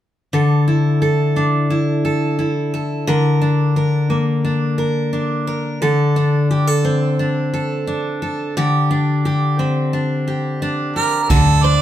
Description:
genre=acoustic pop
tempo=88 BPM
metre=4/4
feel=straight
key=unclear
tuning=A4 = 438 Hz
part: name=picked steel-string acoustic guitar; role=accompaniment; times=0.3-11.8 s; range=D3 to Bb4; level=-16 LUFS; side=left 1 dB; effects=none
part: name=clear harmonica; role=melody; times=11.0-11.8 s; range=A4 to D5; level=-17 LUFS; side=right 5 dB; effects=none
part: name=vintage muted fingered electric bass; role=bass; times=11.3-11.8 s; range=D2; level=-19 LUFS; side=right 1 dB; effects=none
part: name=jazz brush drum kit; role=drums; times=11.3-11.5 s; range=crash cymbal, kick drum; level=-18 LUFS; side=right 1 dB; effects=none
part: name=twelve-string electric guitar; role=arpeggios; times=11.6-11.8 s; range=C5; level=-21 LUFS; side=right 10 dB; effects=none
room=wet studio reverb, RT60 0.8 s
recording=band playing live in one room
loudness=-15 LUFS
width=side -11 dB against mid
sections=0.3-11.3 A section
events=none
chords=0.3 Dsus2; 3.1 Bb/D; 5.8 D7(no3); 8.6 C5/D; 11.3 D5

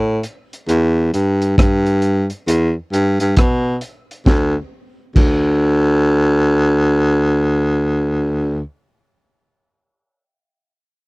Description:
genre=roots reggae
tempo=67 BPM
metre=4/4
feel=swing 62% on 16ths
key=unclear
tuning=A4 = 440 Hz
part: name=mellow baritone saxophone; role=bass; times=0.0-8.6 s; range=D2 to B2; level=-14 LUFS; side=equal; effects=none
part: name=crunchy breakbeat drum kit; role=drums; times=0.2-5.4 s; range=crash cymbal, hi-hat, kick drum, rim click, snare drum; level=-16 LUFS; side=equal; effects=none
room=little or no reverb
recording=dry, close 1970s-style studio recording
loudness=-14 LUFS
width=side -30 dB against mid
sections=0.0-4.3 A section; 4.3-7.8 B section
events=none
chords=none

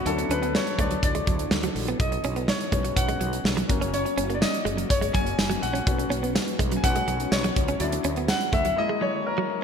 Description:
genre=1980s-style pop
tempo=124 BPM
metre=4/4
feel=straight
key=unclear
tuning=A4 = 444 Hz
part: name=clear baby grand piano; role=accompaniment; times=0.0-9.6 s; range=F#3 to G#5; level=-27 LUFS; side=left 2 dB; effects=lush chorus
part: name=granular cloud pad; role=sustained chords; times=0.0-9.6 s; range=D3 to A#4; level=-34 LUFS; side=left 1 dB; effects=built-in reverb
part: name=direct-recorded clean electric guitar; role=riff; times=0.0-9.5 s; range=F#3 to C#4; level=-31 LUFS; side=right 4 dB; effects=wide subtle chorus, ping-pong delay
part: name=woody fretless electric bass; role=bass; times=0.1-8.7 s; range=F#1 to D2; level=-31 LUFS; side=equal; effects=none
part: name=modern studio drum kit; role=drums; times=0.1-8.8 s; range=hi-hat, kick drum, snare drum, tambourine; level=-26 LUFS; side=equal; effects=gated reverb
room=moderate lush hall reverb, RT60 1.9 s, small room ambience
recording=bright 1980s-style digital production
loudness=-22 LUFS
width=side -7 dB against mid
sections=0.0-9.6 A section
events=grand piano solo 0.0-9.6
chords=0.1 Dadd9; 2.0 Bsus2; 3.7 F#; 5.9 Bsus2; 7.8 Dadd9; 8.8 F#7

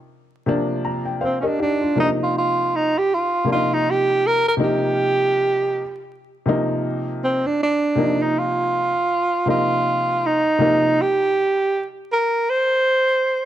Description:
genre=hip hop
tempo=80 BPM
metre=4/4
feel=swing 58% on 16ths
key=C minor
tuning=A4 = 440 Hz
part: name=warm grand piano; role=accompaniment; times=0.5-11.0 s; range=C3 to Bb5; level=-22 LUFS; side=left 2 dB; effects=none
part: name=breathy tenor saxophone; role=melody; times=1.2-13.5 s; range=C4 to C5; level=-18 LUFS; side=right 2 dB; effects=none
room=moderate echo chamber reverb, RT60 2.0 s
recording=vinyl crackle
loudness=-18 LUFS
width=side -12 dB against mid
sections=0.0-2.0 A section; 2.0-13.5 B section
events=grand piano fill 0.5-2.0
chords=0.0 C9sus4; 2.0 Cm7; 12.5 N.C.

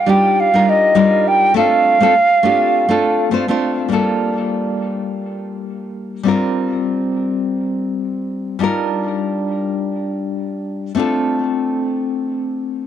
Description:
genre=chillout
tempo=102 BPM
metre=4/4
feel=swing 57% on 16ths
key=unclear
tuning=A4 = 439 Hz
part: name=mellow hollow jazz flute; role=melody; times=0.0-3.3 s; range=Eb5 to G5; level=-14 LUFS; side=right 2 dB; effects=tape echo
part: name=nylon-string guitar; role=accompaniment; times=0.1-12.9 s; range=G3 to C5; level=-17 LUFS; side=left 2 dB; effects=auto-pan, tape echo
room=light reverb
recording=dry, gritty hardware recording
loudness=-14 LUFS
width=side -10 dB against mid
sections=0.0-3.9 A section; 3.9-12.9 B section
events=filter sweep on nylon-string guitar 0.0-3.9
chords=0.0 Ebmaj7; 1.6 Dm7; 3.9 Gm7; 6.3 Bb69; 8.6 Ebmaj7; 11.0 Dm7

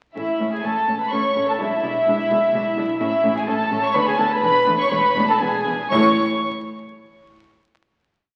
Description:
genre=quick classical-period movement for string orchestra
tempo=125 BPM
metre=3/4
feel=uneven beats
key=A major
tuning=A4 = 440 Hz
part: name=warm symphonic violin section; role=melody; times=0.2-6.2 s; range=E5 to C#6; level=-23 LUFS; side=equal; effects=none
part: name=warm symphonic violin section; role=second line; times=0.2-6.2 s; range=E4 to C#5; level=-26 LUFS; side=equal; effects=none
part: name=dark symphonic viola section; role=accompaniment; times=0.2-6.2 s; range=G#3 to E4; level=-28 LUFS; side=equal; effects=none
part: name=dark symphonic double bass section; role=bass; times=0.2-6.2 s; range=E1 to D2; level=-38 LUFS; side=equal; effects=none
part: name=warm studio cello section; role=bass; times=0.2-6.2 s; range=D2 to B2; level=-35 LUFS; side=equal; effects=none
room=wet scoring stage reverb, RT60 1.6 s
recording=very old 78 rpm record, vinyl crackle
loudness=-20 LUFS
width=mono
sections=0.2-5.9 A section; 5.9-7.4 final chord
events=none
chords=0.2 A; 1.6 E7/B; 3.0 A; 3.9 Bm; 4.4 E7sus4; 5.4 E7; 5.9 A5

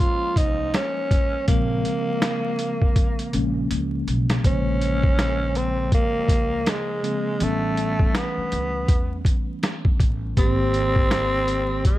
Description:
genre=hip hop, jazz-hop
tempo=81 BPM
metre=4/4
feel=swing 59% on 16ths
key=Bb minor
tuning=A4 = 439 Hz
part: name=growling tenor saxophone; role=melody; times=0.0-12.0 s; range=Ab3 to F4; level=-25 LUFS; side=equal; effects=none
part: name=mellow tine electric piano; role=accompaniment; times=0.0-12.0 s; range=C3 to C5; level=-27 LUFS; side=left 1 dB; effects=medium stereo tremolo
part: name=boom bap sampler-style drum kit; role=drums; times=0.0-12.0 s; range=hi-hat, kick drum, snare drum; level=-22 LUFS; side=equal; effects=none
part: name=upright bass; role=bass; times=0.4-11.8 s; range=Ab1 to E2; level=-27 LUFS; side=equal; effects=none
room=light reverb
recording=dark, warm production, vinyl crackle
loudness=-20 LUFS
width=side -15 dB against mid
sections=0.0-4.4 A section; 4.4-12.0 B section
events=drum fill 3.0-4.4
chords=0.0 Bbm7; 7.4 A9; 10.4 Abmaj7

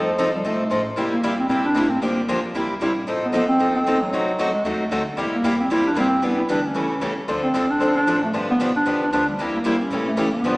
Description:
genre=acoustic string swing (jazz manouche)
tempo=228 BPM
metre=4/4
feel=swing 57% on 8ths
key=C major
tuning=A4 = 440 Hz
part: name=dark clarinet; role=melody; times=0.0-10.6 s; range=F3 to E4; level=-21 LUFS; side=equal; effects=none
part: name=picked steel-string acoustic guitar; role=accompaniment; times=0.0-10.6 s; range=C3 to A4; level=-23 LUFS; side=left 1 dB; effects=none
part: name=picked steel-string acoustic guitar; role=accompaniment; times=0.0-10.6 s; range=C3 to B4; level=-28 LUFS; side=right 1 dB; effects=none
part: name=upright bass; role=bass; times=0.0-10.6 s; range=F1 to Bb2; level=-36 LUFS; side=equal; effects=none
room=wet recital hall reverb, RT60 1.4 s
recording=recorded in a church or concert hall, small speaker sound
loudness=-18 LUFS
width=side -24 dB against mid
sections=0.0-10.6 A section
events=none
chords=0.0 F7; 1.0 C7; 2.0 Gm7; 2.5 C7; 3.1 F7; 4.1 F#dim7; 5.2 C7; 6.2 Em7; 6.7 A7; 7.3 Dm7; 8.3 G7; 9.4 C7; 9.9 A7

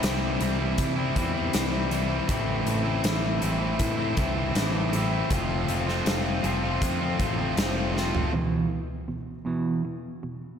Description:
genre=quiet-loud alternative rock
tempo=80 BPM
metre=4/4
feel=straight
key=E phrygian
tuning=A4 = 440 Hz
part: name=high-gain distorted guitar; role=riff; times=0.0-8.3 s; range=A2 to F4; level=-30 LUFS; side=right 9 dB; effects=distortion
part: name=overdriven electric guitar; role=riff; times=0.0-8.3 s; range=A2 to F4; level=-29 LUFS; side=left 8 dB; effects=none
part: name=growling picked electric bass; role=bass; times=0.0-8.2 s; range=F1 to C3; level=-30 LUFS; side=equal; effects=overdrive
part: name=big rock drum kit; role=drums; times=0.0-8.3 s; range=hi-hat, kick drum, snare drum, toms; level=-29 LUFS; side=equal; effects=none
part: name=semi-hollow electric guitar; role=arpeggios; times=8.3-10.6 s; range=E2 to E3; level=-28 LUFS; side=right 3 dB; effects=none
room=wet concert hall reverb, RT60 2.3 s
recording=big arena sound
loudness=-24 LUFS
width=side -8 dB against mid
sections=0.0-8.3 A section; 8.3-10.6 B section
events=drum fill 7.9-8.3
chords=0.0 C; 2.3 Am; 5.3 F; 8.3 E5

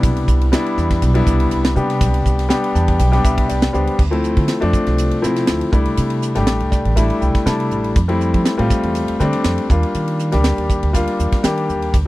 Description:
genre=electric jazz fusion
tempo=121 BPM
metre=4/4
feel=swing 53% on 16ths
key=C major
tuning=A4 = 440 Hz
part: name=clear concert grand piano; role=accompaniment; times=0.0-11.9 s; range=F3 to A5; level=-18 LUFS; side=left 2 dB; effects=none
part: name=upright bass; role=bass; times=0.0-12.1 s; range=A1 to F3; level=-18 LUFS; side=equal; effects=none
part: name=tight funk drum kit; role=drums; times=0.0-12.1 s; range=crash cymbal, hi-hat, kick drum, ride cymbal, snare drum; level=-20 LUFS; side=right 1 dB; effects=none
room=little or no reverb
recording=dry, close 1970s-style studio recording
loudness=-14 LUFS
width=side -18 dB against mid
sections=0.0-4.0 A section; 4.0-12.1 B section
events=grand piano fill 2.5-4.0, 6.5-8.0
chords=0.0 Cmaj9; 4.0 Dm7; 5.7 C69; 8.0 Fmaj7; 9.7 Ebmaj7

